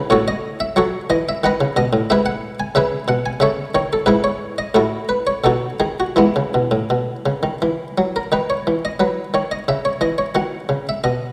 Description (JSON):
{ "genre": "classical, baroque-style suite movement for harpsichord", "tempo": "82-92 BPM", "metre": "3/4", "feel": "rubato", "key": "E major", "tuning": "A4 = 440 Hz", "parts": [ { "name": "buff-stop harpsichord", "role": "solo", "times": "0.0-11.3 s", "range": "G#2 to G#5", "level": "-19 LUFS", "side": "equal", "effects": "none" } ], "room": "wet recital hall reverb, RT60 1.8 s", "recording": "none", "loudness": "-19 LUFS", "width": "mono", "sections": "0.0-8.3 A section; 8.3-11.3 A section", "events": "none", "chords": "0.1 F#m7/A; 1.4 B7; 2.1 E69/G#; 3.4 A/C#; 4.1 E/G#; 4.8 F#m7/A; 5.4 B7; 6.2 E; 8.3 C#m11/D#; 9.7 C#madd9; 10.3 B", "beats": "| 0.12 0.78 1.44 | 2.10 2.76 3.42 | 4.08 4.75 5.44 | 6.16 6.89 7.61 | 8.32 8.99 9.67 | 10.35 11.03" }